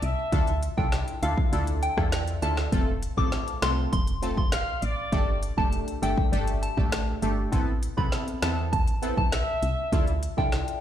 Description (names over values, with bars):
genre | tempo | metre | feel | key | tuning
dancehall | 100 BPM | 4/4 | straight | D dorian | A4 = 439 Hz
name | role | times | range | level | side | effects
mellow horn section | second line | 0.0-0.6, 4.5-5.4, 9.3-10.2 s | D5 to F5 | -31 LUFS | left 1 dB | ping-pong delay
woody FM bass | bass | 0.0-10.6 s | F1 to E2 | -28 LUFS | equal | none
afro-pop drum kit | drums | 0.0-10.8 s | hi-hat, kick drum, rim click, snare drum | -27 LUFS | equal | none
synth brass stab | accompaniment | 0.3-10.8 s | A3 to A4 | -31 LUFS | equal | chorus, phaser
soft synth bell | melody | 0.8-10.5 s | F5 to D6 | -32 LUFS | left 1 dB | chorus, phaser, ping-pong delay
room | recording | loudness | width
light reverb | played on a big sound system in a bare room, large studio reverb | -24 LUFS | side -10 dB against mid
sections
0.0-10.8 A section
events
none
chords
0.3 Dmadd9; 2.7 F; 5.1 Gsus2; 7.5 Amadd9; 9.9 Dmadd9